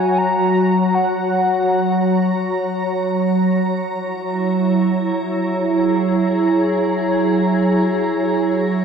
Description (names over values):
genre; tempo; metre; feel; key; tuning
ambient; free time; none; none; F# mixolydian; A4 = 440 Hz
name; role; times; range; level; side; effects
warm velvety synth lead; melody; 0.0-2.9 s; F#5 to A#5; -22 LUFS; equal; chorus, tape echo
glassy FM pad; sustained chords; 0.0-8.8 s; F#3 to A#5; -16 LUFS; right 1 dB; ensemble chorus, built-in reverb
room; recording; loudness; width
wet cathedral reverb, RT60 5.2 s; dark, warm production; -16 LUFS; side -6 dB against mid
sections
0.0-8.8 A section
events
none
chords
0.0 F#9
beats
free time